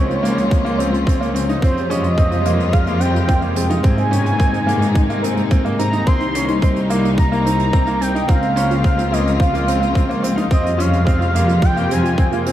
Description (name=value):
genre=piano and strings electronica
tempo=108 BPM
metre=4/4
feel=straight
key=F minor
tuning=A4 = 440 Hz
part: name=warm velvety synth lead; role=melody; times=0.0-12.5 s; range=C5 to C6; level=-23 LUFS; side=right 1 dB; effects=chorus, analog delay
part: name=dark chamber string section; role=sustained chords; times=0.0-12.5 s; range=C3 to F4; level=-23 LUFS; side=left 2 dB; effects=sidechain pumping
part: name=bright upright piano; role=riff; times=0.0-12.5 s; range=Bb3 to Eb4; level=-23 LUFS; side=equal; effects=analog delay
part: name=warm studio cello section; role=bass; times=0.0-12.5 s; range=C2 to Ab2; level=-20 LUFS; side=equal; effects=sidechain pumping
part: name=warbly dusty pluck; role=arpeggios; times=0.1-12.5 s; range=Eb4 to F5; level=-29 LUFS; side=right 2 dB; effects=none
part: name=hi-hat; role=drums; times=0.1-12.5 s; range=none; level=-36 LUFS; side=right 7 dB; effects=none
part: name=electronic kick drum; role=drums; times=0.5-12.3 s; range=none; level=-16 LUFS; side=equal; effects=overdrive
room=moderate huge ambient reverb, RT60 7.3 s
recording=dreamy mix soaked in reverb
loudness=-14 LUFS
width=side -12 dB against mid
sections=0.0-12.5 A section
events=none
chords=0.0 Bbmadd9/Db; 1.6 Fmadd9; 3.8 Abadd9; 6.1 Cm7; 8.3 Bbmadd9/Db; 10.5 Fmadd9